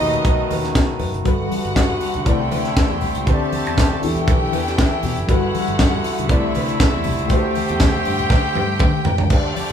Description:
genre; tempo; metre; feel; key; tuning
disco; 119 BPM; 4/4; straight; unclear; A4 = 440 Hz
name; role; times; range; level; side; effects
clear studio string section; second line; 0.0-9.7 s; D4 to A5; -26 LUFS; left 1 dB; none
mellow tine electric piano; accompaniment; 0.0-9.3 s; B2 to D5; -24 LUFS; left 3 dB; medium stereo tremolo
muted French horn section; sustained chords; 0.0-9.7 s; D3 to B4; -25 LUFS; right 1 dB; none
fingered electric bass; bass; 0.0-9.5 s; F#1 to E3; -26 LUFS; right 1 dB; none
tight funk drum kit; drums; 0.1-9.7 s; crash cymbal, hi-hat, kick drum, snare drum, toms; -19 LUFS; equal; none
congas; percussion; 0.1-9.7 s; none; -31 LUFS; left 5 dB; none
cowbell; percussion; 0.2-9.4 s; none; -32 LUFS; right 5 dB; none
room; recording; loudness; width
moderate large studio reverb, RT60 1.0 s; band playing live in one room; -16 LUFS; side -8 dB against mid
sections
0.0-1.3 A section; 1.3-9.3 B section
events
drum fill 8.3-9.3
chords
0.0 B7; 1.3 Gmaj9; 2.3 C69; 3.3 D7sus4; 4.0 Em11; 5.3 Gmaj9; 6.3 C69; 7.3 D7sus4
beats
0.25 0.75 | 1.25 1.76 2.26 2.77 | 3.27 3.77 4.28 4.78 | 5.29 5.79 6.29 6.80 | 7.30 7.80 8.31 8.81 | 9.31

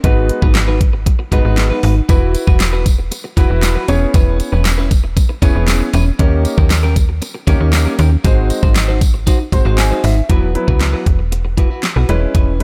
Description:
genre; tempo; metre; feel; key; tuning
dance-pop; 117 BPM; 4/4; straight; unclear; A4 = 441 Hz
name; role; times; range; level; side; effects
warm grand piano; accompaniment; 0.0-12.6 s; F#3 to B#5; -23 LUFS; equal; sidechain pumping
electric guitar at the edge of break-up; riff; 0.0-12.6 s; C#4 to B#4; -25 LUFS; equal; subtle chorus
slap-like FM bass; bass; 0.0-12.6 s; E1 to D#2; -17 LUFS; equal; sidechain pumping
smooth R&B drum kit; drums; 0.0-12.6 s; handclaps, hi-hat, kick drum, snare drum; -16 LUFS; equal; none
tambourine; percussion; 2.1-10.2 s; none; -33 LUFS; equal; none
room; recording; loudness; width
digital ambience; none; -14 LUFS; mono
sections
0.0-10.3 A section; 10.3-12.6 B section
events
grand piano fill 9.3-10.3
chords
0.0 G#m7; 2.1 Esus2; 3.9 C#m7/E; 6.2 D#7; 8.2 G#7; 10.3 Esus2; 12.1 C#m7/E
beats
| 0.04 0.55 1.06 1.58 | 2.09 2.60 3.12 3.63 | 4.14 4.66 5.17 5.68 | 6.19 6.71 7.22 7.73 | 8.24 8.76 9.27 9.78 | 10.30 10.81 11.32 11.83 | 12.35

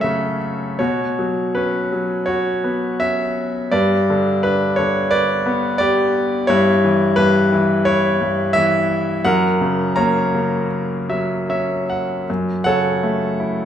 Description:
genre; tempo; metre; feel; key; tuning
classical, lyrical solo piano; 72-89 BPM; 4/4; rubato; B harmonic minor; A4 = 438 Hz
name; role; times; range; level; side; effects
bright concert grand piano; solo; 0.0-13.7 s; F#2 to A#5; -16 LUFS; equal; none
room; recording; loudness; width
wet recital hall reverb, RT60 1.4 s; recorded in a church or concert hall; -16 LUFS; side -9 dB against mid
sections
0.8-12.3 A section; 12.3-13.7 B section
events
grand piano fill 10.7-12.3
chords
0.0 F#m7; 0.8 Bsus2; 3.7 G; 6.5 C#dim/G; 9.3 F#; 12.3 F#m7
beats
0.01 | 0.79 1.54 2.27 3.00 | 3.73 4.43 5.12 5.80 | 6.49 7.18 7.87 8.55 | 9.25 9.97 10.70 11.49 | 12.29 13.03

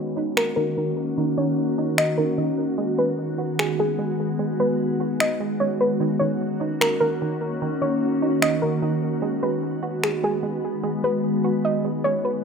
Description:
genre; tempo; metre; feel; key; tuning
hip hop, atmospheric cloud-rap; 149 BPM; 4/4; half-time; G# minor; A4 = 440 Hz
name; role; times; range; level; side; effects
soft round pluck; melody; 0.0-12.4 s; G#4 to D#5; -26 LUFS; equal; chorus, low-pass filter, tape echo
glassy FM pad; sustained chords; 0.0-12.4 s; D#3 to F#4; -24 LUFS; left 1 dB; ensemble chorus, built-in reverb, low-pass filter
hollow square pluck; arpeggios; 0.0-12.4 s; D#3 to F#4; -31 LUFS; right 6 dB; chorus, low-pass filter, tape echo
electronic finger snaps; drums; 0.4-10.1 s; none; -24 LUFS; equal; none
room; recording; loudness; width
light reverb, digital ambience; rough home demo mix; -21 LUFS; side -6 dB against mid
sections
0.0-12.4 A section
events
filter sweep 0.0-12.4; drums muted 10.8-12.4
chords
0.0 D#m7; 2.8 G#m7; 6.0 D#m7; 9.2 G#m7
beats
0.37 0.77 | 1.17 1.58 1.98 2.38 | 2.78 3.19 3.59 3.99 | 4.39 4.80 5.20 5.60 | 6.00 6.41 6.81 7.21 | 7.62 8.02 8.42 8.82 | 9.23 9.63 10.03 10.44 | 10.84 11.24 11.64 12.05

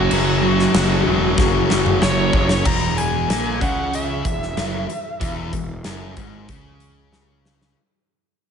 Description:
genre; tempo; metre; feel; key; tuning
hard rock; 94 BPM; 4/4; straight; unclear; A4 = 441 Hz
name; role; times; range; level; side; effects
biting lead guitar; melody; 0.0-7.1 s; F#4 to A#5; -24 LUFS; equal; overdrive
overdriven tonewheel organ; sustained chords; 0.0-2.6 s; F#3 to G#4; -31 LUFS; left 1 dB; none
overdriven electric guitar; riff; 0.0-2.3 s; F#2 to F#3; -24 LUFS; left 1 dB; none
sludgy distorted guitar; riff; 0.0-7.8 s; E2 to F#3; -26 LUFS; right 10 dB; overdrive
tight distorted guitar; riff; 0.0-7.8 s; E2 to F#3; -25 LUFS; left 12 dB; distortion
fuzz picked electric bass; bass; 0.0-7.7 s; E1 to C#2; -24 LUFS; equal; overdrive
huge arena drum kit; drums; 0.1-7.8 s; crash cymbal, hi-hat, kick drum, snare drum, toms; -23 LUFS; equal; none
room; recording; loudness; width
little or no reverb; nothing above 10.8 kHz; -16 LUFS; side -7 dB against mid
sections
0.0-2.6 A section; 2.6-7.8 B section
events
drum fill 1.4-2.6, 7.1-7.8; fade-out 2.6-7.8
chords
0.0 F#5; 2.6 E69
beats
| 0.10 0.74 1.38 2.01 | 2.65 3.29 3.93 4.57 | 5.21 5.85 6.49 7.13

